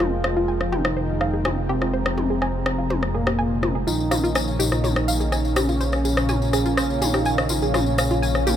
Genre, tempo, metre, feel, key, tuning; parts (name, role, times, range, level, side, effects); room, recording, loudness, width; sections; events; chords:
melodic techno; 124 BPM; 4/4; straight; A4 = 440 Hz
fat analog lead; melody; 0.0-8.6 s; Bb3 to F4; -26 LUFS; equal; tape echo
lush unison pad; sustained chords; 0.0-8.6 s; Db3 to G5; -30 LUFS; equal; chorus, vintage 12-bit sampler grit
analog pluck; arpeggios; 0.0-8.6 s; F4 to Ab5; -27 LUFS; equal; chorus, ping-pong delay
dark detuned saw bass; bass; 0.0-8.6 s; F1 to Bb1; -25 LUFS; equal; tube saturation
techno drum kit; drums; 0.0-8.6 s; rim click, toms; -26 LUFS; left 2 dB
deep dark ambient pad; texture; 0.0-8.6 s; Bb4 to Bb5; -33 LUFS; equal; chorus, built-in reverb
tambourine; percussion; 3.9-8.6 s; -31 LUFS; left 6 dB
light reverb, digital ambience; -19 LUFS; side -10 dB against mid
0.0-8.6 A section
filter sweep on synth pluck 0.0-8.6
0.0 Fmadd9; 3.9 Bbm